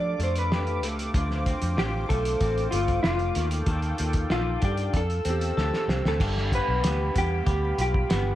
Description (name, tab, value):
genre	indie pop, bedroom pop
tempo	95 BPM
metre	4/4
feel	straight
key	unclear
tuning	A4 = 440 Hz
part	mellow electric guitar	melody	0.0-8.3 s	F4 to D5	-28 LUFS	equal	analog chorus, slapback echo
part	electric guitar through a small old amp	accompaniment	0.0-8.3 s	G2 to A4	-33 LUFS	left 1 dB	lush chorus, warbly pitch drift
part	warm analog pad	sustained chords	0.0-8.3 s	G4 to E6	-36 LUFS	right 1 dB	chorus
part	vintage muted fingered electric bass	bass	0.0-8.3 s	F1 to F3	-27 LUFS	equal	none
part	cloth-damped thuddy drum kit	drums	0.2-8.3 s	crash cymbal, hi-hat, kick drum, snare drum	-29 LUFS	equal	none
room	studio reverb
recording	none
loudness	-23 LUFS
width	side -13 dB against mid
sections	0.0-6.2 A section; 6.2-8.3 B section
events	drum fill 5.6-6.2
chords	0.0 F69; 1.1 Dm7; 3.4 Ebmaj9#11; 4.9 Fmaj7; 6.2 G7